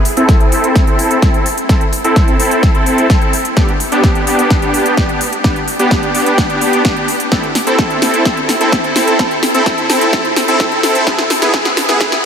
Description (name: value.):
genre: EDM, festival progressive house.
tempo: 128 BPM.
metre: 4/4.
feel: straight.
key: A minor.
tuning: A4 = 440 Hz.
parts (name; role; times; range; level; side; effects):
big-room dance drum kit; drums; 0.1-12.2 s; hi-hat, snare drum; -17 LUFS; equal; overdrive.
supersaw chords; riff; 0.2-12.1 s; B3 to A4; -13 LUFS; equal; sidechain pumping, low-pass filter, diffuse ambient delay.
electronic kick drum; drums; 0.3-12.1 s; none; -14 LUFS; equal; overdrive.
room: wet huge ambient reverb, RT60 8.3 s.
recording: dreamy mix soaked in reverb, high-pass filter.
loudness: -10 LUFS.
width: side -7 dB against mid.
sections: 0.0-12.3 A section.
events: build-up 0.0-12.3; drum fill 0.0-12.3; filter sweep on supersaw synth 0.0-12.3; filter sweep 0.0-12.3.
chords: 0.0 Am; 3.6 G; 7.3 Am; 11.1 E.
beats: 0.29 0.76 1.22 | 1.69 2.16 2.63 3.10 | 3.57 4.04 4.50 4.97 | 5.44 5.91 6.38 6.85 | 7.32 7.79 8.26 8.72 | 9.19 9.66 10.13 10.60 | 11.07 11.54 12.01.